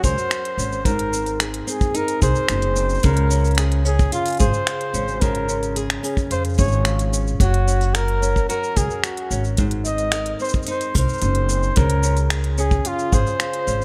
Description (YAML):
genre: folktronica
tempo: 110 BPM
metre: 4/4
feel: straight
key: unclear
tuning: A4 = 440 Hz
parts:
  - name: breathy flugelhorn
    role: melody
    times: 0.0-13.8 s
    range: F4 to Eb5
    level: -26 LUFS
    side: equal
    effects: vintage 12-bit sampler grit, delay
  - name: flamenco guitar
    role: arpeggios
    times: 0.0-13.8 s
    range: Ab2 to Bb4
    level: -30 LUFS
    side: equal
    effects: delay
  - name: upright bass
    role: bass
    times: 0.0-13.8 s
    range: Gb1 to F2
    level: -23 LUFS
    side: equal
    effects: none
  - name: kick drum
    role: drums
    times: 0.0-13.2 s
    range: none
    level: -24 LUFS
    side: equal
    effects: none
  - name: organic electronic drum kit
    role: drums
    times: 0.0-13.8 s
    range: finger snaps, hi-hat, shaker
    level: -29 LUFS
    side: equal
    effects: none
room: light reverb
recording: none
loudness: -20 LUFS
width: mono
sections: 0.0-13.8 A section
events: none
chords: 0.0 Gb; 0.9 Abadd9; 3.0 Db; 7.4 Gb; 9.6 Abadd9; 11.8 Db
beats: 0.31 | 0.85 1.40 1.95 2.49 | 3.04 3.58 4.13 4.67 | 5.22 5.76 6.31 6.86 | 7.40 7.95 8.49 9.04 | 9.58 10.13 10.67 11.22 | 11.77 12.31 12.86 13.40